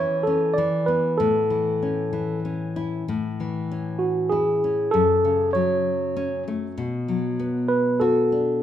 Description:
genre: children's music, lullaby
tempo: 97 BPM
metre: 3/4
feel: straight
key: A major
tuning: A4 = 438 Hz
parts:
  - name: tine electric piano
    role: melody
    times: 0.0-8.6 s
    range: F#4 to D5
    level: -21 LUFS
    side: right 1 dB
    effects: none
  - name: nylon-string guitar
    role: accompaniment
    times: 0.0-8.6 s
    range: F#2 to F#4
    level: -25 LUFS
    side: left 3 dB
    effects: none
room: wet recital hall reverb, RT60 1.4 s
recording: minimal, uncompressed stereo recording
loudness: -20 LUFS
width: side -10 dB against mid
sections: 0.0-3.1 A section; 3.1-8.6 B section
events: none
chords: 0.0 A/E; 0.6 E5; 1.2 A; 4.9 F#m; 6.8 Bm

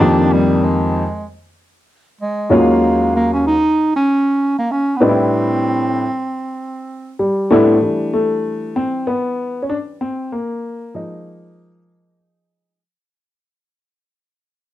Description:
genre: hip hop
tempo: 96 BPM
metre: 4/4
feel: swing 58% on 16ths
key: unclear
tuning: A4 = 440 Hz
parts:
  - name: breathy bass clarinet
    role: melody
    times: 0.0-7.2 s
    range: G3 to D#4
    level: -17 LUFS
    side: right 1 dB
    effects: cassette tape
  - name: dark upright piano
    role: accompaniment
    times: 0.0-12.8 s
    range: D#2 to B4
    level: -15 LUFS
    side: left 1 dB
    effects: none
room: wet studio reverb, RT60 0.6 s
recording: home recording on cassette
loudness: -14 LUFS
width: side -14 dB against mid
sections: 0.0-7.8 A section; 7.8-12.8 B section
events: fade-out 7.8-12.8; upright piano solo 7.8-12.8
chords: 0.0 Fm11; 2.5 D#m11; 5.0 Am11; 7.8 Em7; 10.0 Fm7

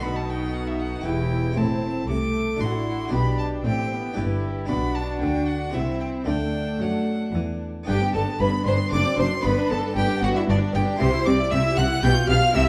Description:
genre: classical, baroque-style concerto movement with solo episodes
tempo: 115 BPM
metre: 3/4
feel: straight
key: G major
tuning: A4 = 441 Hz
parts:
  - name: clear violin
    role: melody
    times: 0.0-12.6 s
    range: D5 to G6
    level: -33 LUFS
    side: equal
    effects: none
  - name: rich studio violin section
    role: melody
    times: 0.0-12.7 s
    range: A4 to G6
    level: -38 LUFS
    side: equal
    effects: none
  - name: rich chamber violin section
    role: second line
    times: 0.0-12.7 s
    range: D4 to G5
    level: -31 LUFS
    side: equal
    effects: none
  - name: harpsichord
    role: accompaniment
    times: 0.0-12.7 s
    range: E2 to E5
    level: -33 LUFS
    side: equal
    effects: none
  - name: rich chamber viola section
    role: accompaniment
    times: 0.0-12.7 s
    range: A3 to G4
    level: -31 LUFS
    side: equal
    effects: none
  - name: clear chamber cello section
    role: bass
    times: 0.0-12.6 s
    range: E2 to F#3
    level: -30 LUFS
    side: equal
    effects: none
  - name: warm chamber double bass section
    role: bass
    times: 0.0-12.6 s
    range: E1 to F#2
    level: -29 LUFS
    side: equal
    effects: none
room: wet recital hall reverb, RT60 1.4 s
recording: dark, warm production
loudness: -23 LUFS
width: mono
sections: 0.0-7.9 A section; 7.9-12.7 B section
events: none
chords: 0.0 B7; 1.1 Em; 1.6 Am; 2.6 D7/A; 3.1 G/B; 4.2 G; 4.7 G/B; 5.7 C; 6.3 D; 7.9 G; 8.9 D7/F#; 9.4 G; 11.0 C; 12.0 G7/B

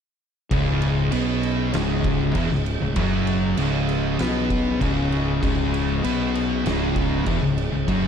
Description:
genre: stoner and doom metal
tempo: 98 BPM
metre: 4/4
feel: straight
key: C# minor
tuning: A4 = 442 Hz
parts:
  - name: tonewheel organ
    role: sustained chords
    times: 0.5-8.1 s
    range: C#4 to D#5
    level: -34 LUFS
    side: equal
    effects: slow rotary speaker, chorus vibrato
  - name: distorted electric guitar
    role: riff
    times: 0.5-8.1 s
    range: C#2 to B3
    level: -29 LUFS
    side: equal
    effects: distortion
  - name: thick fuzz guitar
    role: riff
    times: 0.5-8.1 s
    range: C#2 to B3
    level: -26 LUFS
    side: left 9 dB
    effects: distortion
  - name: thick fuzz guitar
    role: riff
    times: 0.5-8.1 s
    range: C#2 to B3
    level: -26 LUFS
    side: right 8 dB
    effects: distortion
  - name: fuzz fingered electric bass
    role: bass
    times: 0.5-8.1 s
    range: C#1 to B1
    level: -27 LUFS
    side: equal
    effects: overdrive
  - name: oversized low-tuned drum kit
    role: drums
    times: 0.5-8.0 s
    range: crash cymbal, kick drum, snare drum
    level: -27 LUFS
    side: right 1 dB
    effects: none
room: little or no reverb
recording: dark, warm production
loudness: -20 LUFS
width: side -7 dB against mid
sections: 0.5-8.1 A section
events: none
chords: 0.5 C#m

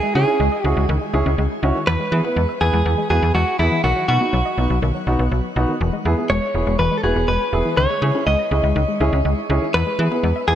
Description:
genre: synth-pop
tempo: 122 BPM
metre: 4/4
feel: straight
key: E major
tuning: A4 = 440 Hz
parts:
  - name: direct-recorded clean electric guitar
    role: melody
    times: 0.0-10.6 s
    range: E4 to D#5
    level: -21 LUFS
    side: equal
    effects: shimmer reverb, ping-pong delay
  - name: wide unison pluck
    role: arpeggios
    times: 0.0-10.5 s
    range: D#3 to E5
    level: -26 LUFS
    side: left 3 dB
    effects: shimmer reverb, ping-pong delay
  - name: warm concert grand piano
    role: accompaniment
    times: 0.2-10.6 s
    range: B3 to B4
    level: -24 LUFS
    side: right 1 dB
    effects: shimmer reverb
  - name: slap-like FM bass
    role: bass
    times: 0.2-10.6 s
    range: E1 to E3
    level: -19 LUFS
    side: equal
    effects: none
room: moderate lush hall reverb, RT60 2.4 s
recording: none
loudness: -16 LUFS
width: side -10 dB against mid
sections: 0.0-10.6 A section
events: none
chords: 0.0 C#madd9; 1.9 E; 3.8 B; 5.8 E; 7.8 C#madd9; 9.7 E

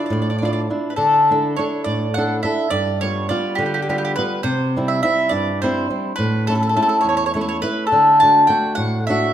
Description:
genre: italian folk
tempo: 69 BPM (dotted quarters)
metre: 6/8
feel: straight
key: D major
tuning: A4 = 439 Hz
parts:
  - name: mandolin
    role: melody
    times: 0.0-9.3 s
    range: G4 to A5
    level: -18 LUFS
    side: equal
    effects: none
  - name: flamenco guitar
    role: accompaniment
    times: 0.0-9.3 s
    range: E2 to A4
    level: -21 LUFS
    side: equal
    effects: none
room: moderate recital hall reverb, RT60 1.7 s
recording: none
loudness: -16 LUFS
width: side -10 dB against mid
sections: 1.0-9.3 A section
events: none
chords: 0.0 Dmadd9; 1.0 Dsus2; 2.7 G7; 4.4 C; 6.2 A; 7.9 D

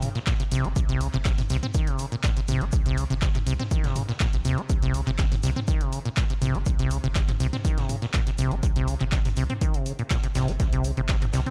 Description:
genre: acid house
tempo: 122 BPM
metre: 4/4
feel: straight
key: C phrygian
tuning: A4 = 442 Hz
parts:
  - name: acid bass, saw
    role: riff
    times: 0.0-11.5 s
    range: Bb2 to C4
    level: -30 LUFS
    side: equal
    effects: tube saturation, cassette tape, sidechain pumping, analog delay
  - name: punchy analog drum machine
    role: drums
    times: 0.0-11.5 s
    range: handclaps, hi-hat, toms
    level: -35 LUFS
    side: equal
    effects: overdrive
  - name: street-band drum kit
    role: drums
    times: 0.0-11.5 s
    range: hi-hat, shaker, snare drum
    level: -44 LUFS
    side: equal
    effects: sidechain pumping on hats, high-pass filter on hats, high-pass filter on snare, sidechain pumping on perc, high-pass filter on perc, high-pass filter on room
  - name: electronic kick drum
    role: drums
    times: 0.3-11.2 s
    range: none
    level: -28 LUFS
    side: equal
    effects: overdrive
  - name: round analog bass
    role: bass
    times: 0.5-11.4 s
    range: G1 to Eb2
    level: -32 LUFS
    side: equal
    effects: tube saturation, sidechain pumping
room: small room ambience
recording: dry, gritty hardware recording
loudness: -25 LUFS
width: mono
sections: 0.0-11.5 A section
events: none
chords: 0.0 C5

